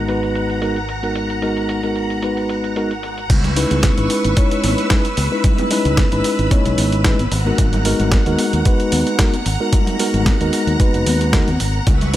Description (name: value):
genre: nu-disco, nu disco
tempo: 112 BPM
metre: 4/4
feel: swing 54% on 16ths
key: C# dorian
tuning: A4 = 440 Hz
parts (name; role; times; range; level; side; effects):
- mellow tine electric piano; accompaniment; 0.0-12.2 s; G#3 to C#5; -20 LUFS; equal; slow stereo tremolo, dub echo
- string machine, full ensemble; sustained chords; 0.0-12.2 s; B4 to E6; -25 LUFS; equal; ensemble chorus, sidechain pumping
- fingered electric bass; bass; 0.0-12.2 s; F#1 to D#2; -21 LUFS; equal; none
- dusty soul sampler-style drum kit; drums; 0.1-12.2 s; crash cymbal, hi-hat, snare drum; -23 LUFS; right 1 dB; low-pass filter on hats, low-pass filter on cymbals, low-pass filter on snare
- electronic kick drum; drums; 3.3-12.0 s; none; -16 LUFS; equal; none
- congas; percussion; 3.3-12.1 s; none; -27 LUFS; equal; none
room: light reverb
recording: none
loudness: -15 LUFS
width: side -14 dB against mid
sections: 0.0-3.3 A section; 3.3-12.2 B section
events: drop 3.3-12.2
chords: 0.0 G#m9; 3.3 C#m7; 7.3 G#m9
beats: 0.09 0.62 | 1.16 1.69 2.23 2.76 | 3.30 3.83 4.37 4.91 | 5.44 5.98 6.51 7.05 | 7.58 8.12 8.66 9.19 | 9.73 10.26 10.80 11.34 | 11.87